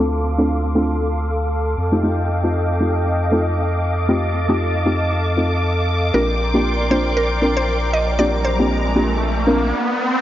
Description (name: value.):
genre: house.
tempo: 117 BPM.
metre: 4/4.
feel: swing 56% on 16ths.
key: unclear.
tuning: A4 = 441 Hz.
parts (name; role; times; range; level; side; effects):
soft string machine; sustained chords; 0.0-9.7 s; A4 to D6; -23 LUFS; equal; ensemble chorus.
deep mellow chord stab; stabs; 0.0-9.7 s; A3 to Bb4; -21 LUFS; equal; chorus, vintage 12-bit sampler grit, analog delay.
round analog bass; bass; 0.0-9.7 s; Bb1 to F2; -21 LUFS; equal; none.
clear symphonic violin section; texture; 0.0-9.7 s; D6; -29 LUFS; left 1 dB; none.
mallet-like synth pluck; melody; 6.1-9.2 s; Bb4 to Eb5; -24 LUFS; equal; chorus, cassette tape, analog delay.
riser; sound effects; 7.7-10.2 s; none; -23 LUFS; equal; none.
room: light reverb.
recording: dry, gritty hardware recording, low-pass filter, nothing above 7.5 kHz.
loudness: -16 LUFS.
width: side -13 dB against mid.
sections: 0.0-10.2 A section.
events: filter sweep on string machine 0.0-10.2; filter sweep 0.0-10.2; riser 7.7-10.2.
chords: 0.0 Dm7; 1.8 F9; 6.1 Bb69.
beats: 0.50 1.01 1.52 | 2.04 2.55 3.06 3.58 | 4.09 4.60 5.11 5.63 | 6.14 6.65 7.17 7.68 | 8.19 8.70 9.22 9.73.